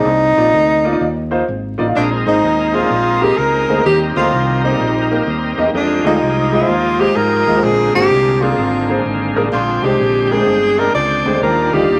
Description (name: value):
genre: uptempo gospel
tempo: 127 BPM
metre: 4/4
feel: swing 65% on 8ths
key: unclear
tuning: A4 = 442 Hz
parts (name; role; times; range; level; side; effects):
- breathy tenor saxophone; melody; 0.0-12.0 s; D4 to D5; -17 LUFS; equal; none
- warm concert grand piano; accompaniment; 0.0-12.0 s; Bb2 to F5; -22 LUFS; equal; none
- fingered electric bass; bass; 0.0-12.0 s; G1 to Ab2; -24 LUFS; equal; none
- overdriven tonewheel organ; sustained chords; 2.0-12.0 s; D3 to G5; -22 LUFS; equal; slow rotary speaker
room: wet studio reverb, RT60 0.8 s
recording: vinyl crackle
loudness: -15 LUFS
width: mono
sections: 0.0-12.0 A section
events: none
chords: 0.1 Cm11; 2.0 Bb9sus4; 3.9 Eb6; 5.7 Fm9; 7.6 Bb9; 9.5 Bb13; 11.4 Ebmaj9